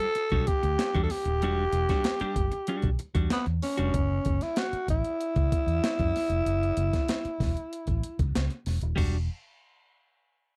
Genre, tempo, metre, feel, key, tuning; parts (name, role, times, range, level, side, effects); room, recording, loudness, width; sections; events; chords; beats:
funk; 95 BPM; 4/4; straight; E dorian; A4 = 440 Hz
growling tenor saxophone; melody; 0.0-8.3 s; B3 to A4; -31 LUFS; equal
clean electric guitar; accompaniment; 0.0-3.9, 9.0-9.2 s; G3 to G4; -35 LUFS; equal
breakbeat sampler-style drum kit; drums; 0.0-9.1 s; crash cymbal, hi-hat, kick drum, snare drum; -32 LUFS; equal
vintage muted fingered electric bass; bass; 0.3-9.3 s; D#1 to F#2; -31 LUFS; equal
little or no reverb; dry, close 1970s-style studio recording; -28 LUFS; mono
0.0-9.0 A section; 9.0-10.6 B section
0.0 Em9; 3.9 F#m7; 9.0 Em9
0.16 0.79 | 1.42 2.05 2.68 3.31 | 3.94 4.57 5.20 5.83 | 6.46 7.09 7.72 8.35 | 8.98